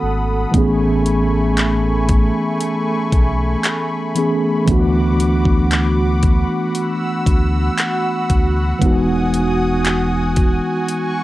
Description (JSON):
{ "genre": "contemporary R&B", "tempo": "58 BPM", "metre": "4/4", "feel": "straight", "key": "unclear", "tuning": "A4 = 440 Hz", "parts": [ { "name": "mellow tine electric piano", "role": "accompaniment", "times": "0.0-11.2 s", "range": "D#3 to G#4", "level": "-18 LUFS", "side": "equal", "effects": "medium stereo tremolo" }, { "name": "warm analog pad", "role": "sustained chords", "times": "0.0-11.2 s", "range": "A3 to E6", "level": "-22 LUFS", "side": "equal", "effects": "chorus, tremolo" }, { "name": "sub bass with octave", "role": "bass", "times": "0.0-10.6 s", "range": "E1 to D2", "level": "-20 LUFS", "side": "equal", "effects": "none" }, { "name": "trap drum kit", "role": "drums", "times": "0.5-11.1 s", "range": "handclaps, hi-hat, kick drum", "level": "-17 LUFS", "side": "equal", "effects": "cassette tape" } ], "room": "light reverb", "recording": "home recording on cassette", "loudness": "-14 LUFS", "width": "side -16 dB against mid", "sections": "0.0-11.2 A section", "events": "break 0.0-0.5", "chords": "0.0 B7; 0.5 Amaj9; 4.7 D69; 8.8 Emaj9", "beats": "| 0.54 1.57 2.61 3.64 | 4.68 5.71 6.75 7.78 | 8.82 9.85 10.88" }